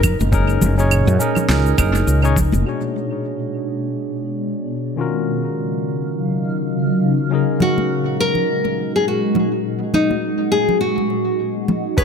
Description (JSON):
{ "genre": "sunset chillout", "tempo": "103 BPM", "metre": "4/4", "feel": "swing 57% on 16ths", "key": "F# major", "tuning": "A4 = 440 Hz", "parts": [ { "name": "nylon-string guitar", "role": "melody", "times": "0.0-0.2, 7.6-12.0 s", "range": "D#4 to B4", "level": "-20 LUFS", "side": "left 2 dB", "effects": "tape echo" }, { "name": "shimmering ambient pad", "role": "sustained chords", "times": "0.0-12.0 s", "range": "A#2 to E#5", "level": "-21 LUFS", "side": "left 1 dB", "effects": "chorus, built-in reverb, phaser" }, { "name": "woody fretless electric bass", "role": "bass", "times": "0.0-2.6 s", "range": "F#1 to F#2", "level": "-16 LUFS", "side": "equal", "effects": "none" }, { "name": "electronic claves, cabasa and snare drum", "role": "drums", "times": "0.0-2.6, 12.0 s", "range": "none", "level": "-25 LUFS", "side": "right 2 dB", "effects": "low-pass filter on perc, low-pass filter on snare, tape echo" }, { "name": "electronic kick drum", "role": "drums", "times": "0.0-2.5, 12.0 s", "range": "none", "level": "-18 LUFS", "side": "equal", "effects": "overdrive" }, { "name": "congas and bongos", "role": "percussion", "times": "0.0-2.6, 7.6-11.8 s", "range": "none", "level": "-25 LUFS", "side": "equal", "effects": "tape echo" }, { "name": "barky tine electric piano", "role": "accompaniment", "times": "0.3-12.0 s", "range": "B2 to C#5", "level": "-24 LUFS", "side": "moving between left 7 dB and right 6 dB", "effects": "auto-pan, low-pass filter, tape echo" } ], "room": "light reverb", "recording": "echo-heavy mix", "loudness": "-16 LUFS", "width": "side -6 dB against mid", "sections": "0.0-2.7 A section; 2.7-12.0 B section", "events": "filter sweep on ambient pad 2.7-12.0", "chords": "0.0 F#69; 2.7 Bm6; 5.0 D#m9; 7.3 F#69" }